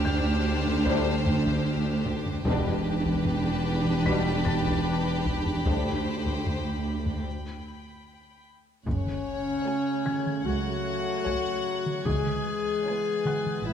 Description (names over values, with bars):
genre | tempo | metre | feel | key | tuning
cinematic, suspense film score | 75 BPM | 4/4 | straight | unclear | A4 = 442 Hz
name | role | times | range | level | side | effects
warm symphonic violin section | melody | 0.0-13.7 s | B4 to G#5 | -37 LUFS | left 4 dB | none
warm chamber violin section | second line | 0.0-13.5 s | G4 to G#5 | -36 LUFS | left 1 dB | none
dark symphonic viola section | accompaniment | 0.0-13.5 s | A3 to F#4 | -33 LUFS | right 3 dB | none
dark chamber cello section | bass | 0.0-13.7 s | C#2 to C#3 | -30 LUFS | equal | none
dark symphonic double bass section | bass | 0.0-13.7 s | E1 to D2 | -32 LUFS | right 1 dB | none
dark chamber violin section | texture | 0.0-13.7 s | G5 to G#6 | -42 LUFS | left 2 dB | none
felt-muted upright piano | texture | 0.0-13.7 s | F#5 to B6 | -41 LUFS | left 4 dB | none
taiko ensemble | drums | 0.1-13.7 s | none | -33 LUFS | left 1 dB | none
mellow French horn section | sustained chords | 0.9-13.7 s | C#3 to C5 | -35 LUFS | left 6 dB | none
warm trombone section | sustained chords | 0.9-13.7 s | A2 to B3 | -37 LUFS | right 3 dB | none
timpani | percussion | 2.5-3.6, 12.1-13.2 s | E2 to C#3 | -35 LUFS | equal | none
mellow clarinet | second line | 8.9-13.7 s | C#4 to G#4 | -29 LUFS | left 1 dB | none
room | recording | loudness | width
moderate scoring stage reverb, RT60 1.9 s | none | -25 LUFS | side -8 dB against mid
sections
0.0-8.9 A section; 8.9-13.7 B section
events
break 7.3-8.9; drum fill 8.1-8.9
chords
0.0 D7sus4; 2.5 Em7; 5.7 D7sus4; 7.3 G; 8.9 F#madd9; 12.1 C#m7